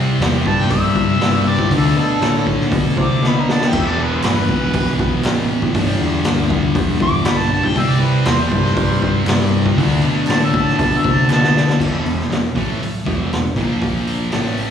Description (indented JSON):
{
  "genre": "garage rock duo or trio",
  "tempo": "119 BPM",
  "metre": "4/4",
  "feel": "straight",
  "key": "E minor",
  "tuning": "A4 = 440 Hz",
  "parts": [
    { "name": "thick fuzz guitar", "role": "riff", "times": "0.0-14.7 s", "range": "E2 to D4", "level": "-19 LUFS", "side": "left 1 dB", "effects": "distortion" },
    { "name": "growling picked electric bass", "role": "bass", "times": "0.0-14.7 s", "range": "E1 to C3", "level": "-20 LUFS", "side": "equal", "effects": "overdrive, tube saturation" },
    { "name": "raw garage drum kit", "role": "drums", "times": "0.2-14.7 s", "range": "crash cymbal, hi-hat, kick drum, snare drum", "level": "-20 LUFS", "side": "equal", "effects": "none" },
    { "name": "warm harmonica", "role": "melody", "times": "0.5-11.8 s", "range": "A4 to D6", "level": "-21 LUFS", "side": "equal", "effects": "overdrive, slapback echo" },
    { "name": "group handclap", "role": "percussion", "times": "4.2-11.4 s", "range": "none", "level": "-33 LUFS", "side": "right 1 dB", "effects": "none" }
  ],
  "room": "light reverb",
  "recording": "live gig heard through the venue's PA, recital hall reverb, studio ambience",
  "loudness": "-14 LUFS",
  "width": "side -8 dB against mid",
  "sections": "0.0-11.8 A section; 11.8-14.7 B section",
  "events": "harmonica solo 0.0-11.8; drum fill 3.2-3.7, 11.3-11.8",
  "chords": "0.0 C; 1.7 D5; 3.7 E5; 5.8 G; 7.8 C5; 9.8 D5; 11.8 E5; 13.6 A#5"
}